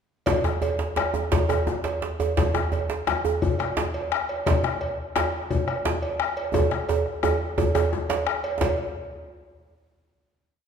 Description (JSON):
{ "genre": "west african traditional, West African drum ensemble", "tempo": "115 BPM (dotted quarters)", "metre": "12/8", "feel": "straight", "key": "none", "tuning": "none", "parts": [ { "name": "bombo", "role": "percussion", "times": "0.3-8.8 s", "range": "none", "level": "-28 LUFS", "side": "left 4 dB", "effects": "none" }, { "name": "cowbell", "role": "percussion", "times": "0.3-8.8 s", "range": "none", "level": "-30 LUFS", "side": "right 3 dB", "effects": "none" }, { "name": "djembe", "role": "percussion", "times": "0.3-8.8 s", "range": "none", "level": "-30 LUFS", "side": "left 6 dB", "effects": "none" }, { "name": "djembe", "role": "percussion", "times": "0.3-8.8 s", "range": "none", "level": "-26 LUFS", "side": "right 4 dB", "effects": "none" } ], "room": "wet recital hall reverb, RT60 1.7 s", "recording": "minimal, uncompressed stereo recording", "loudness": "-22 LUFS", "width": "side -7 dB against mid", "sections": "0.3-8.6 A section; 8.6-10.7 final hit", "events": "drum fill 6.5-8.6", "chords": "none", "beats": "| 0.27 0.79 1.32 1.84 | 2.37 2.89 3.42 3.94 | 4.46 4.98 5.50 6.03 | 6.54 7.06 7.58 8.09 | 8.61" }